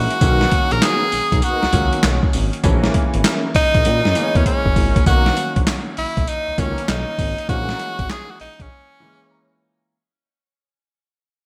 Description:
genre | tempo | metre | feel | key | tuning
R&B, new jack swing | 99 BPM | 4/4 | swing 66% on 16ths | unclear | A4 = 439 Hz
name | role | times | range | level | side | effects
edgy tenor saxophone | melody | 0.0-9.6 s | C#4 to A#4 | -23 LUFS | equal | digital delay
warm grand piano | accompaniment | 0.0-9.9 s | D#3 to A#5 | -28 LUFS | equal | subtle chorus
mellow synth brass | stabs | 0.0-7.8 s | B3 to A#4 | -31 LUFS | equal | chorus
smooth gliding synth bass | bass | 0.0-8.7 s | F#1 to A#2 | -23 LUFS | equal | none
boom bap sampler-style drum kit | drums | 0.1-8.7 s | handclaps, hi-hat, kick drum, snare drum, tambourine | -22 LUFS | equal | gated reverb
room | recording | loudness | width
moderate plate reverb, RT60 1.3 s | bright 1980s-style digital production | -18 LUFS | mono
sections
0.0-5.1 A section; 5.1-9.9 B section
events
drum fill 4.5-5.1; fade-out 5.1-9.9; break 8.7-9.9; grand piano fill 9.0-9.9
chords
0.2 Bmaj7; 2.6 F#7; 5.1 Bmaj7; 7.5 F#7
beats
| 0.21 0.82 1.43 2.03 | 2.64 3.25 3.85 4.46 | 5.06 5.67 6.28 6.88 | 7.49 8.09 8.70 9.30

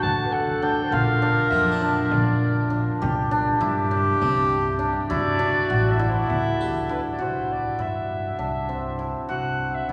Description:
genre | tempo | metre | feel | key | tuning
contemporary instrumental, chamber music in an uneven meter | 201 BPM (eighths) | 7/8 | straight | C lydian | A4 = 441 Hz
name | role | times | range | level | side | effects
dark soprano saxophone | melody | 0.0-9.9 s | B4 to A5 | -32 LUFS | equal | none
mellow clarinet | second line | 0.0-7.2 s | D4 to C5 | -29 LUFS | equal | none
hammered dulcimer | arpeggios | 0.0-9.9 s | C4 to G4 | -28 LUFS | equal | none
upright bass | bass | 0.0-9.9 s | A1 to G2 | -29 LUFS | equal | none
frame drum | percussion | 0.0-6.7 s | none | -37 LUFS | equal | none
harpsichord | texture | 1.5-7.5 s | Bb3 to G4 | -43 LUFS | equal | none
room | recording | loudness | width
wet cathedral reverb, RT60 6.7 s | recorded in a church or concert hall | -23 LUFS | mono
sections
0.0-7.2 A section; 7.2-9.9 B section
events
none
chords
0.0 D; 0.9 Bb; 3.0 Csus2; 5.1 Dsus2; 7.2 C; 9.3 D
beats
0.03 0.33 0.62 | 0.92 1.22 1.52 1.82 2.12 2.41 2.71 | 3.01 3.31 3.61 3.91 4.20 4.50 4.80 | 5.10 5.40 5.70 6.00 6.30 6.60 6.89 | 7.20 7.50 7.79 8.10 8.39 8.70 8.99 | 9.30 9.60 9.90

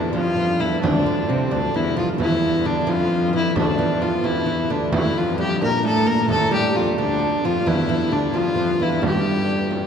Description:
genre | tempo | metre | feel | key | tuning
medieval dance | 88 BPM (dotted quarters) | 6/8 | straight | G dorian | A4 = 440 Hz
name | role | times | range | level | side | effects
rich fiddle | melody | 0.0-9.9 s | C4 to Bb4 | -22 LUFS | left 2 dB | slapback echo
clear viola da gamba | second line | 0.0-9.9 s | D2 to C3 | -25 LUFS | left 3 dB | none
oud | second line | 0.0-9.9 s | C3 to Bb3 | -25 LUFS | right 4 dB | none
pedal harmonium | drone | 0.0-9.9 s | G2 to D3 | -30 LUFS | right 1 dB | none
frame drum | percussion | 0.1-9.9 s | none | -27 LUFS | right 2 dB | none
room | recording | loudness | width
wet cathedral reverb, RT60 5.3 s | dark, warm production | -18 LUFS | side -7 dB against mid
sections
0.0-9.9 A section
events
none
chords
none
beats
0.14 | 0.82 1.51 | 2.19 2.88 | 3.56 4.24 | 4.93 5.61 | 6.29 6.98 | 7.66 8.34 | 9.03 9.71

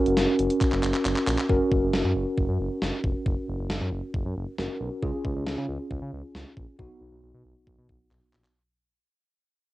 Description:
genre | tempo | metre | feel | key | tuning
synth-pop | 136 BPM | 4/4 | straight | F# major | A4 = 441 Hz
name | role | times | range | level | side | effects
mellow tine electric piano | accompaniment | 0.0-8.5 s | B3 to A#4 | -27 LUFS | equal | medium stereo tremolo, cassette tape
smooth synth bass | bass | 0.1-8.4 s | E#1 to C#3 | -30 LUFS | equal | none
gated 80s digital drum machine | drums | 0.1-8.5 s | handclaps, hi-hat, kick drum, snare drum | -28 LUFS | equal | gated reverb, gated reverb snare, cassette tape
room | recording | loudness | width
light reverb | home recording on cassette | -24 LUFS | side -17 dB against mid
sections
0.0-1.5 A section; 1.5-8.6 B section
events
drum fill 0.6-1.5, 8.1-8.6; fade-out 1.5-8.6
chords
0.0 F#; 5.0 C#; 6.8 B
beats
0.17 0.61 1.05 | 1.50 1.94 2.38 2.82 | 3.26 3.70 4.14 4.58 | 5.02 5.46 5.91 6.35 | 6.79 7.23 7.67 8.11

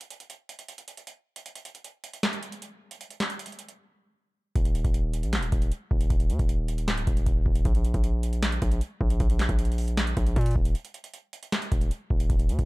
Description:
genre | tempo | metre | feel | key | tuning
hip hop, trap | 155 BPM | 4/4 | half-time | unclear | A4 = 441 Hz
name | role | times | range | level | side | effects
booming analog drum machine | drums | 0.0-12.7 s | handclaps, hi-hat, kick drum, snare drum | -26 LUFS | equal | overdrive
distorted 808-style bass | bass | 4.6-12.7 s | D1 to Bb2 | -27 LUFS | equal | distortion
room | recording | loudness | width
little or no reverb | dark, warm production | -24 LUFS | side -22 dB against mid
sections
0.0-4.6 A section; 4.6-12.7 B section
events
break 3.8-4.6, 10.7-11.5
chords
none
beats
0.30 0.69 1.07 | 1.46 1.85 2.23 2.62 | 3.01 3.39 3.78 4.17 | 4.56 4.94 5.33 5.72 | 6.10 6.49 6.88 7.26 | 7.65 8.04 8.43 8.81 | 9.20 9.59 9.97 10.36 | 10.75 11.14 11.52 11.91 | 12.30

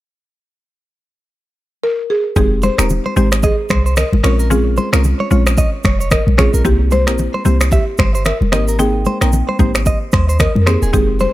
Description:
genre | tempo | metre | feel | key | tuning
afrobeats | 112 BPM | 4/4 | swing 58% on 16ths | F minor | A4 = 440 Hz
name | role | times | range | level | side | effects
buzzing marimba with soft mallets | melody | 1.8-11.3 s | G4 to C5 | -20 LUFS | equal | tape echo
mallet-like synth pluck | accompaniment | 2.4-11.3 s | Ab3 to G5 | -20 LUFS | left 1 dB | chorus
clean 808-style bass | bass | 2.4-11.3 s | Eb1 to F2 | -15 LUFS | equal | none
afro-pop drum kit | drums | 2.4-11.3 s | finger snaps, kick drum, rim click, shaker | -17 LUFS | equal | none
congas | percussion | 2.4-11.3 s | none | -22 LUFS | left 2 dB | none
direct-recorded clean electric guitar | riff | 2.6-11.3 s | Ab4 to E5 | -23 LUFS | right 4 dB | tape echo
room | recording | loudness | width
digital ambience | none | -12 LUFS | side -16 dB against mid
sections
0.2-2.4 A section; 2.4-11.3 B section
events
none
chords
0.2 N.C.; 2.4 Fm7; 4.2 Bbm7; 6.6 C7; 8.5 Abmaj9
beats
| 0.22 0.76 1.29 1.83 | 2.36 2.90 3.43 3.97 | 4.51 5.04 5.58 6.11 | 6.65 7.18 7.72 8.26 | 8.79 9.33 9.86 10.40 | 10.93

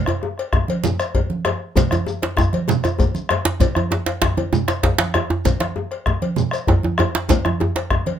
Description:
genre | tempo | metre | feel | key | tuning
west african traditional, West African drum ensemble | 130 BPM (dotted quarters) | 12/8 | straight | none | none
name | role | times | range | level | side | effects
bombo | percussion | 0.1-8.0 s | none | -21 LUFS | left 1 dB | none
cowbell | percussion | 0.1-8.2 s | none | -27 LUFS | left 7 dB | none
djembe | percussion | 0.1-7.9 s | none | -21 LUFS | right 2 dB | none
djembe | percussion | 0.2-8.0 s | none | -25 LUFS | left 3 dB | none
congas | percussion | 0.7-8.2 s | none | -24 LUFS | right 5 dB | none
shekere | percussion | 0.8-7.4 s | none | -30 LUFS | left 1 dB | none
room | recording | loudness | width
moderate studio reverb, RT60 0.5 s | none | -17 LUFS | side -10 dB against mid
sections
0.0-8.2 A section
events
none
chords
none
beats
0.39 0.84 1.31 | 1.77 2.23 2.69 3.15 | 3.61 4.07 4.53 4.99 | 5.45 5.91 6.37 6.83 | 7.29 7.75

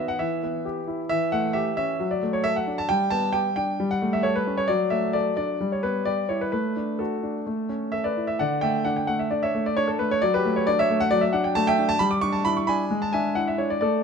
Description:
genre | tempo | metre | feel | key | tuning
classical-period piano sonatina | 133 BPM | 4/4 | straight | D major | A4 = 442 Hz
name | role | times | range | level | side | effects
clear baby grand piano | solo | 0.0-14.0 s | D3 to D6 | -22 LUFS | equal | none
room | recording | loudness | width
moderate recital hall reverb, RT60 1.7 s | close, detailed microphones | -22 LUFS | side -6 dB against mid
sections
0.0-8.4 A section; 8.4-14.0 B section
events
none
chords
0.2 Em; 1.1 A7/E; 2.0 D/F#; 2.9 G; 3.8 A7/G; 4.7 D/F#; 5.6 Em/G; 6.5 D/A; 7.5 A; 8.4 D5; 10.2 D/F#; 12.0 Em7/G; 12.9 E7/G#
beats
0.20 0.64 | 1.09 1.54 1.99 2.44 | 2.89 3.34 3.79 4.25 | 4.70 5.15 5.61 6.07 | 6.53 7.00 7.47 7.93 | 8.39 8.85 9.31 9.77 | 10.22 10.67 11.12 11.56 | 12.01 12.46 12.91 13.36 | 13.82

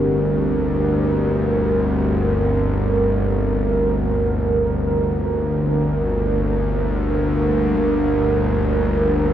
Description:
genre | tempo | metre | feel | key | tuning
dark ambient drone | free time | none | none | G minor | A4 = 442 Hz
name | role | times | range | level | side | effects
deep dark ambient pad | sustained chords | 0.0-9.3 s | G3 to Bb4 | -21 LUFS | right 2 dB | chorus, built-in reverb
gamelan-type bossed gongs | arpeggios | 0.0-9.3 s | none | barely audible | none | none
bowed-like drone | drone | 0.0-9.3 s | G1 to D2 | -19 LUFS | left 1 dB | built-in reverb
room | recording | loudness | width
wet huge ambient reverb, RT60 7.4 s | dreamy mix soaked in reverb | -17 LUFS | side -10 dB against mid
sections
0.0-9.3 A section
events
none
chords
0.0 Gm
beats
free time

